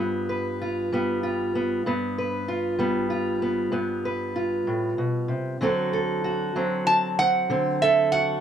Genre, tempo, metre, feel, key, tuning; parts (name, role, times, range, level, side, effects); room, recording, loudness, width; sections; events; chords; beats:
acoustic country blues, solo or duo; 64 BPM (dotted quarters); 12/8; straight; A4 = 441 Hz
fingerpicked steel-string acoustic guitar; accompaniment; 0.0-8.4 s; G2 to B4; -24 LUFS; equal
metal-body resonator slide guitar; melody; 6.9-8.4 s; E5 to A5; -20 LUFS; right 3 dB
light reverb; close, detailed microphones; -22 LUFS; side -9 dB against mid
0.0-8.4 A section
0.0 G7; 5.6 D7
0.91 | 1.85 2.79 3.73 4.67 | 5.61 6.55 7.49